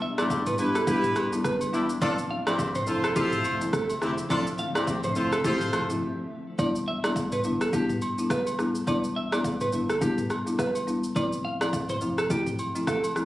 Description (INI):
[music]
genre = afrobeats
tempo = 105 BPM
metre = 4/4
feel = swing 58% on 16ths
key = unclear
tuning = A4 = 440 Hz
[part]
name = folk marimba with medium mallets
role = accompaniment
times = 0.0-13.2 s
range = F3 to E4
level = -29 LUFS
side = left 1 dB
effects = none
[part]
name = granular cloud pad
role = sustained chords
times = 0.0-6.5 s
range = D3 to E5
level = -38 LUFS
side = equal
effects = built-in reverb
[part]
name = electric guitar at the edge of break-up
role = riff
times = 0.0-13.0 s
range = G4 to F5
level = -31 LUFS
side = right 1 dB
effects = harmonic tremolo, digital delay
[part]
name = warm sub bass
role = bass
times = 0.0-13.2 s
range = D1 to G1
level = -40 LUFS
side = equal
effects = none
[part]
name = warm horn section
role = second line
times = 0.2-5.9 s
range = C4 to C5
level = -29 LUFS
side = equal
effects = none
[part]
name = afro-pop drum kit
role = drums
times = 0.2-13.2 s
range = kick drum, rim click, shaker, toms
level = -31 LUFS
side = equal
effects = none
[part]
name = agogo bells and woodblock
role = percussion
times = 0.2-13.1 s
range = none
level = -35 LUFS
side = right 1 dB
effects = none
[sound]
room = light reverb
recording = recorded on a phone in the room, club reverb, compression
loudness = -24 LUFS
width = side -15 dB against mid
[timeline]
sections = 0.0-6.6 A section; 6.6-13.2 B section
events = break 6.0-6.6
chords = 0.0 Em7; 2.0 Dm7; 6.6 Em7; 11.2 Dm7